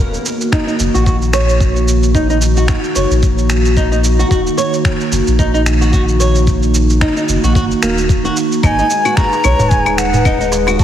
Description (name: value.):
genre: organic downtempo.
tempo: 111 BPM.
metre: 4/4.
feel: swing 56% on 16ths.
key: Eb minor.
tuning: A4 = 438 Hz.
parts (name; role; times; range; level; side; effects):
warbly tape-like pad; sustained chords; 0.1-10.8 s; Eb3 to Cb5; -17 LUFS; right 1 dB; chorus, built-in reverb, sidechain pumping.
warm sub bass; bass; 0.0-10.8 s; Eb1 to Cb2; -15 LUFS; equal; sidechain pumping.
electronic shaker, finger snaps and claves; drums; 0.1-10.8 s; none; -21 LUFS; equal; overdrive, studio reverb.
flamenco guitar; arpeggios; 0.5-10.8 s; Bb3 to Db5; -20 LUFS; right 1 dB; low-pass filter, tape echo.
electronic kick drum; drums; 0.5-10.8 s; none; -14 LUFS; equal; overdrive, studio reverb.
bright reedy bansuri; melody; 8.6-10.8 s; Gb5 to Bb5; -16 LUFS; equal; tape echo.
darbuka; percussion; 9.2-10.8 s; none; -20 LUFS; right 1 dB; none.
room: moderate lush hall reverb, RT60 1.9 s, small room ambience.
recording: heavily compressed radio sound.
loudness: -11 LUFS.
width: side -10 dB against mid.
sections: 0.0-10.8 A section.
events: filter sweep on nylon-string guitar 0.0-10.8.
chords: 0.0 Ebm; 8.6 Abmadd9.